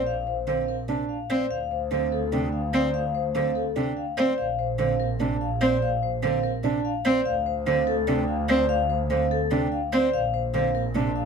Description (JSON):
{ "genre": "classical, minimalist pattern music", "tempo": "292 BPM (eighths)", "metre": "7/8", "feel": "straight", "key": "Bb major", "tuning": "A4 = 440 Hz", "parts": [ { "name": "vibraphone with soft mallets", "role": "melody", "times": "0.0-11.3 s", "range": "A4 to A5", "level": "-28 LUFS", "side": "left 11 dB", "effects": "none" }, { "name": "warm concert grand piano", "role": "arpeggios", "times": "0.0-11.2 s", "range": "C4 to C5", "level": "-27 LUFS", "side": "right 6 dB", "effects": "none" }, { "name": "rich symphonic double bass section", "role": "bass", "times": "0.0-11.3 s", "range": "Bb1 to D2", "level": "-30 LUFS", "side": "right 2 dB", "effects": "none" }, { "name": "warm cello", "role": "accompaniment", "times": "0.5-11.1 s", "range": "C3 to C4", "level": "-26 LUFS", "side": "right 1 dB", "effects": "none" } ], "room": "light reverb", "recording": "none", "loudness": "-22 LUFS", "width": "side -6 dB against mid", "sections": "0.0-11.3 A section", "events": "none", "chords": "0.0 Bb; 1.5 Dm7; 4.4 Bb; 7.3 Dm7; 10.1 Bbmaj7" }